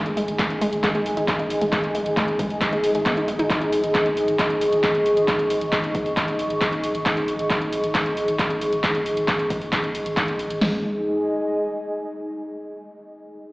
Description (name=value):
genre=driving peak-time techno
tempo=135 BPM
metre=4/4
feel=straight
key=unclear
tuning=A4 = 440 Hz
part: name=wide unison pluck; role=riff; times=0.0-3.5, 10.6-10.8 s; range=G#3 to G#4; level=-27 LUFS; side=equal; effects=overdrive, sidechain pumping, dub echo
part: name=warbly tape-like pad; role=texture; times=0.0-12.4 s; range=D#4 to C#6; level=-23 LUFS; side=equal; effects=chorus, built-in reverb, sidechain pumping
part: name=techno drum kit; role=drums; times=0.1-10.6 s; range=handclaps, hi-hat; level=-25 LUFS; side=equal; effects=overdrive, sidechain pumping on hats, studio reverb, sidechain pumping on cymbals
part: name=warm sub bass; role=bass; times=0.2-10.8 s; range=G#1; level=-37 LUFS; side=equal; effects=overdrive, sidechain pumping, low-pass filter
part: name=punchy analog drum machine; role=drums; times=0.4-10.7 s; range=hi-hat, kick drum, snare drum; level=-26 LUFS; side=equal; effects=studio reverb
room=wet huge ambient reverb, RT60 8.3 s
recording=played on a big sound system in a bare room, large studio reverb, AM radio sound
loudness=-20 LUFS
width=side -23 dB against mid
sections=0.0-10.6 A section; 10.6-12.4 B section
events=none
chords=0.0 G#5